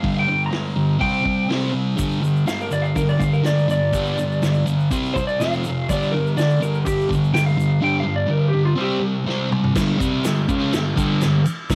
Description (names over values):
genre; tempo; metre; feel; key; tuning
garage rock duo or trio; 124 BPM; 4/4; straight; unclear; A4 = 440 Hz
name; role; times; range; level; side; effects
electric slide guitar; melody; 0.0-9.0 s; F4 to Bb5; -26 LUFS; equal; cassette tape
thick fuzz guitar; riff; 0.0-11.8 s; F2 to C#4; -21 LUFS; equal; distortion, cassette tape
vintage drum kit; drums; 0.0-11.8 s; crash cymbal, hi-hat, kick drum, ride cymbal, snare drum, toms; -30 LUFS; equal; cassette tape
egg shaker; percussion; 2.0-11.8 s; none; -44 LUFS; equal; none
room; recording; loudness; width
moderate booth ambience, RT60 0.2 s; home recording on cassette; -20 LUFS; mono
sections
0.0-9.8 A section; 9.8-11.8 B section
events
drum fill 9.3-9.8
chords
0.0 G5; 1.0 C5; 2.0 G5; 4.9 C5; 5.4 F5; 5.9 G5; 8.8 C5; 9.8 G5